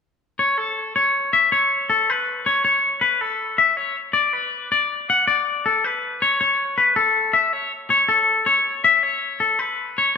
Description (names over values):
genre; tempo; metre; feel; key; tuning
rock; 160 BPM; 5/4; straight; A major; A4 = 440 Hz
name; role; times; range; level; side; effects
twangy electric guitar; solo; 0.4-10.1 s; A4 to F#5; -17 LUFS; left 3 dB; spring reverb
room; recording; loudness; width
moderate large studio reverb, RT60 0.9 s; band playing live in one room; -17 LUFS; side -5 dB against mid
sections
0.2-10.2 A section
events
none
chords
none